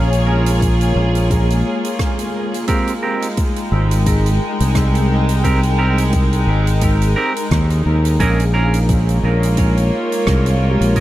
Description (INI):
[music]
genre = ambient dub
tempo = 87 BPM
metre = 4/4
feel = swing 57% on 16ths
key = Bb dorian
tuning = A4 = 440 Hz
[part]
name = dark studio string section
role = sustained chords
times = 0.0-11.0 s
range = Ab3 to G5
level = -21 LUFS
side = equal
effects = none
[part]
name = clean electric guitar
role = stabs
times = 0.0-11.0 s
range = C4 to Bb4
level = -24 LUFS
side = right 3 dB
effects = vintage 12-bit sampler grit, low-pass filter, dub echo
[part]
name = overdriven fingered electric bass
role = bass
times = 0.0-11.0 s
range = Ab1 to Eb2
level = -15 LUFS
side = equal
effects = none
[part]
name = bubbling stepped-filter texture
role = texture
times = 0.7-11.0 s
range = Ab3 to Ab4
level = -26 LUFS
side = left 1 dB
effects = chorus, built-in reverb
[part]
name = soft-mallet drum kit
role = drums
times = 0.1-11.0 s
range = hi-hat, rim click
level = -30 LUFS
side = right 3 dB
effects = dub echo
[part]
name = electronic kick drum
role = drums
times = 0.6-11.0 s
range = none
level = -19 LUFS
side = equal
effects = none
[part]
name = handpan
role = arpeggios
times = 10.7-11.0 s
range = G4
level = -25 LUFS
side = right 1 dB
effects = none
[sound]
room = small room ambience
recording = echo-heavy mix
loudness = -14 LUFS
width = side -15 dB against mid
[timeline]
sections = 0.0-11.0 A section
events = filter sweep on clean electric guitar 0.0-11.0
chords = 0.0 Bbm7; 2.7 Abmaj9; 8.2 Bbm7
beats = 0.61 1.30 1.99 | 2.68 3.37 4.06 4.75 | 5.44 6.13 6.82 7.51 | 8.20 8.89 9.58 10.27 | 10.96